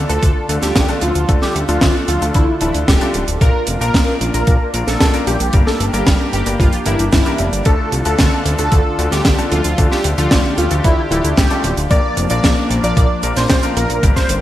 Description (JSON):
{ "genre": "italo disco", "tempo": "113 BPM", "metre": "4/4", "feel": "straight", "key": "D minor", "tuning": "A4 = 440 Hz", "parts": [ { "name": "warm analog pad", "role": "sustained chords", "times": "0.0-14.4 s", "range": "D3 to A4", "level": "-24 LUFS", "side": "equal", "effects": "chorus" }, { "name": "bright grand piano", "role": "stabs", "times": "0.0-14.4 s", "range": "G2 to Bb4", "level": "-24 LUFS", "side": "left 4 dB", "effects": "none" }, { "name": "fat analog bass", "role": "bass", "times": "0.0-14.4 s", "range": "D1 to D2", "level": "-19 LUFS", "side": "equal", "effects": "tube saturation" }, { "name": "wide unison lead", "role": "melody", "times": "0.1-14.3 s", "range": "E4 to D5", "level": "-20 LUFS", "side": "equal", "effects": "ensemble chorus, cassette tape, digital delay" }, { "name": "tight funk drum kit", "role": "drums", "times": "0.1-14.4 s", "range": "hi-hat, snare drum", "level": "-19 LUFS", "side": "right 1 dB", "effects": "gated reverb" }, { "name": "electronic kick drum", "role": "drums", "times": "0.2-14.3 s", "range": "none", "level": "-15 LUFS", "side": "equal", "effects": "none" } ], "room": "light reverb, small room reverb", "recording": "bright 1980s-style digital production, lossy compression artefacts", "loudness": "-13 LUFS", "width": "side -13 dB against mid", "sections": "0.0-14.4 A section", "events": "none", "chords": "0.0 Dm; 3.4 Bb; 5.5 Gm; 7.7 Dm; 11.9 Bb" }